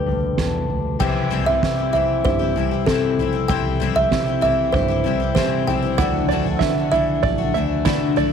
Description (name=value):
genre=indie folk with a building arrangement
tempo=96 BPM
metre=4/4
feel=straight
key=unclear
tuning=A4 = 440 Hz
part: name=kalimba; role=melody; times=0.0-7.8 s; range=A4 to G5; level=-22 LUFS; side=right 1 dB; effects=none
part: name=fingerpicked steel-string acoustic guitar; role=accompaniment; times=0.0-8.3 s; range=G2 to G4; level=-28 LUFS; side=left 14 dB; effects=none
part: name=fingered electric bass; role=bass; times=0.0-8.3 s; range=A1 to D3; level=-25 LUFS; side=right 1 dB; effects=none
part: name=soft-mallet drum kit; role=drums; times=0.1-8.3 s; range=crash cymbal, kick drum, snare drum, toms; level=-24 LUFS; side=right 3 dB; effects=none
part: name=picked twelve-string acoustic guitar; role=accompaniment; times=1.0-8.3 s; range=C3 to G4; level=-25 LUFS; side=left 13 dB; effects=none
part: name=open-back banjo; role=arpeggios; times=6.0-8.3 s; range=E4 to E5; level=-24 LUFS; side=right 12 dB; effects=none
room=light reverb, small room ambience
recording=1960s-style stereo with parts hard left and right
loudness=-17 LUFS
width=side -7 dB against mid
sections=0.0-1.0 A section; 1.0-8.3 B section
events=none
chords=0.0 G; 1.0 C; 6.0 Dadd9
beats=0.38 | 1.01 1.63 2.25 2.88 | 3.50 4.12 4.74 5.37 | 5.99 6.61 7.24 7.86